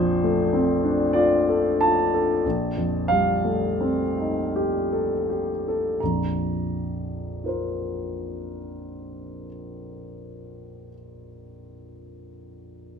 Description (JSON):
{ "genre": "classical, impressionist solo piano", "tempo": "39-53 BPM", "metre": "5/4", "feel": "rubato", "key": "Bb major", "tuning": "A4 = 442 Hz", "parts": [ { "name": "warm concert grand piano", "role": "solo", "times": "0.0-13.0 s", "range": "Bb1 to Bb5", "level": "-23 LUFS", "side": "equal", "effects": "none" } ], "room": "light reverb", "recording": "close, detailed microphones", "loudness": "-21 LUFS", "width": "side -6 dB against mid", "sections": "0.0-6.0 A section; 6.0-13.0 B section", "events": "slowing down 0.0-6.0", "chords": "0.0 Bbmaj9; 2.4 F9/Bb; 6.0 Bbsus2" }